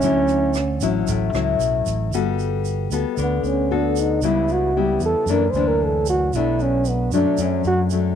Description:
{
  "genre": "bossa nova",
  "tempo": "114 BPM",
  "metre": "4/4",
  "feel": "straight",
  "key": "unclear",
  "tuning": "A4 = 436 Hz",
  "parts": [
    { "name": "mellow trombone", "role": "melody", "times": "0.0-7.8 s", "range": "B3 to C5", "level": "-21 LUFS", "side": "right 2 dB", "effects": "none" },
    { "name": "nylon-string guitar", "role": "accompaniment", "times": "0.0-8.2 s", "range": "F#2 to A4", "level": "-22 LUFS", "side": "left 10 dB", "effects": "none" },
    { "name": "fingered electric bass", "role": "bass", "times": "0.0-8.2 s", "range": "G1 to F#2", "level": "-24 LUFS", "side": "right 3 dB", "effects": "none" },
    { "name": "jazz brush drum kit", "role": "drums", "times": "0.0-2.0 s", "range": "hi-hat, kick drum, rim click", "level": "-34 LUFS", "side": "right 3 dB", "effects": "none" },
    { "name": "tube shaker", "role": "percussion", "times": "0.0-8.2 s", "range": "none", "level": "-36 LUFS", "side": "right 20 dB", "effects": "none" }
  ],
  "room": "light reverb, small room ambience",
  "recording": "1960s-style stereo with parts hard left and right",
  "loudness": "-18 LUFS",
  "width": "side -8 dB against mid",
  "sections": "0.0-2.1 A section; 2.1-8.2 A section",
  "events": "trombone solo 0.0-8.2",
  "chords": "0.0 Dmaj9; 2.1 Gmaj9; 4.2 C#m7b5; 5.3 F#aug7; 6.3 Bm7"
}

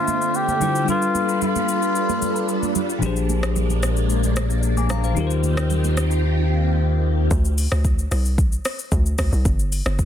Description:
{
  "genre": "amapiano",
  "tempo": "112 BPM",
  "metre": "4/4",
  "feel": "straight",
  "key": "unclear",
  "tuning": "A4 = 435 Hz",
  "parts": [
    { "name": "trumpet with cup mute", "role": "melody", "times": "0.0-2.7 s", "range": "F4 to G4", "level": "-23 LUFS", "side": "left 1 dB", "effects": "ping-pong delay" },
    { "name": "bell-like tine electric piano", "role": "accompaniment", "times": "0.0-7.3 s", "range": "Bb2 to D6", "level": "-25 LUFS", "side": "left 6 dB", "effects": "none" },
    { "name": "phased string machine", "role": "sustained chords", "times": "0.0-7.3 s", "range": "D3 to E5", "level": "-26 LUFS", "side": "right 1 dB", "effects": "ensemble chorus, phaser, sidechain pumping" },
    { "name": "afro-pop drum kit", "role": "drums", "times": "0.1-10.1 s", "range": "hi-hat, kick drum, rim click, shaker", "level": "-24 LUFS", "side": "equal", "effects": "overdrive" },
    { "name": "congas", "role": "percussion", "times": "0.1-6.0 s", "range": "none", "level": "-30 LUFS", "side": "right 10 dB", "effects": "none" },
    { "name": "deep dub fingered electric bass", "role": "bass", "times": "3.0-7.3 s", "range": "Bb1 to Eb2", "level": "-20 LUFS", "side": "equal", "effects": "none" },
    { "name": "hollow log drum bass", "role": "bass", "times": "7.3-10.1 s", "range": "G1 to D2", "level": "-20 LUFS", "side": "equal", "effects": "none" }
  ],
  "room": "digital ambience",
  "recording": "dense, heavily limited modern master",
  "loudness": "-18 LUFS",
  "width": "side -10 dB against mid",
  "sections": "0.0-7.3 A section; 7.3-10.1 B section",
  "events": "silent gap 6.2-7.3; drop 7.3-10.1",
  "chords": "0.0 Dm9; 0.9 G9; 3.0 Bb13; 5.2 Eb69; 7.3 Csus2; 9.5 N.C."
}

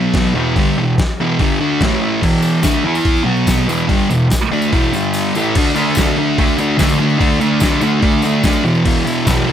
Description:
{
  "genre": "garage rock duo or trio",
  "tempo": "145 BPM",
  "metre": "4/4",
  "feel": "straight",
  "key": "unclear",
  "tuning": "A4 = 440 Hz",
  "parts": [
    { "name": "thick fuzz guitar", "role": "riff", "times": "0.0-9.5 s", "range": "E2 to E4", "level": "-14 LUFS", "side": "equal", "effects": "distortion" },
    { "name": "boom bap sampler-style drum kit", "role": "drums", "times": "0.1-9.4 s", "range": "crash cymbal, hi-hat, kick drum, snare drum", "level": "-18 LUFS", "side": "equal", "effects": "none" },
    { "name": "tambourine", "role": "percussion", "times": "2.4-9.4 s", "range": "none", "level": "-31 LUFS", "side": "left 3 dB", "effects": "none" }
  ],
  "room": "light reverb",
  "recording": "none",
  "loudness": "-12 LUFS",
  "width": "side -9 dB against mid",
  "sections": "0.0-5.6 A section; 5.6-9.5 B section",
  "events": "kick and snare drop out 5.1-5.6",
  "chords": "0.3 E5; 1.8 A5; 2.2 E5; 3.3 B5; 3.7 E5; 4.9 G5; 5.3 A5; 5.6 D5; 8.6 E5"
}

